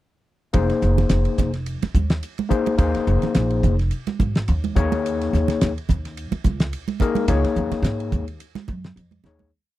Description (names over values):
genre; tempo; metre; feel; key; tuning
electric jazz fusion; 107 BPM; 4/4; swing 55% on 16ths; F minor; A4 = 440 Hz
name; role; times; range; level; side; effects
overdriven tine electric piano; accompaniment; 0.5-9.5 s; Bb3 to Db5; -22 LUFS; left 5 dB; wide subtle chorus
upright bass; bass; 0.5-9.5 s; F1 to Ab2; -22 LUFS; equal; none
damped 70s drum kit; drums; 0.5-9.5 s; hi-hat, kick drum, ride cymbal, snare drum, toms; -22 LUFS; equal; none
congas; percussion; 1.0-9.5 s; none; -26 LUFS; right 8 dB; none
room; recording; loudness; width
little or no reverb; dry, close 1970s-style studio recording; -19 LUFS; side -15 dB against mid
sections
0.5-9.5 groove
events
fade-out 7.3-9.5; drum fill 9.2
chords
0.5 Fm7; 4.8 Eb7(no3)